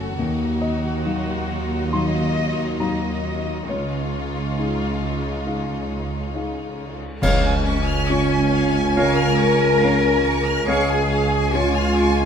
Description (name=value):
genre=cinematic, emotional film score for orchestra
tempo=69 BPM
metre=4/4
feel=rubato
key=Db major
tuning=A4 = 445 Hz
part: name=rich studio violin section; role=melody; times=0.0-12.3 s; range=F4 to Ab5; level=-29 LUFS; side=left 2 dB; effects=none
part: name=rich studio violin section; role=second line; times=0.0-12.3 s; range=Db4 to F6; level=-30 LUFS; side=left 1 dB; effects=none
part: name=rich studio viola section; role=accompaniment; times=0.0-12.3 s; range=Gb3 to Db4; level=-29 LUFS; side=left 1 dB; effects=none
part: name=warm concert grand piano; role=accompaniment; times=0.0-12.3 s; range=Db2 to C6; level=-26 LUFS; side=left 3 dB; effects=none
part: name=rich studio cello section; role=bass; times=0.0-12.3 s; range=Db2 to Bb4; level=-24 LUFS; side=equal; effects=none
part: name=rich studio double bass section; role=bass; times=0.0-12.3 s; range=Gb1 to Eb2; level=-25 LUFS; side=right 4 dB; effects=none
part: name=cymbal swell, clash cymbals and concert bass drum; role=percussion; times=3.7-8.9 s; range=none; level=-26 LUFS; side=right 1 dB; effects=none
part: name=clear oboe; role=second line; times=7.2-11.0 s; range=F5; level=-29 LUFS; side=right 3 dB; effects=none
part: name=warm clarinet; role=second line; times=7.2-11.0 s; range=Db5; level=-27 LUFS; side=left 2 dB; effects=none
part: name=mellow French horn section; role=sustained chords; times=7.2-12.3 s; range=Ab3 to F4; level=-25 LUFS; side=equal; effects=none
part: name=timpani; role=percussion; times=7.2-8.5 s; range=Db3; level=-30 LUFS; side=left 2 dB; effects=none
room=light reverb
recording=none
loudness=-18 LUFS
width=side -7 dB against mid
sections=0.0-7.2 A section; 7.2-12.3 A section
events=band accent 7.2-8.1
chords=0.2 Ebmadd9; 3.7 Dbadd9; 7.2 Db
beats=| 0.19 1.05 1.93 2.80 | 3.68 4.58 5.46 6.34 | 7.22 8.09 8.96 9.83 | 10.68 11.54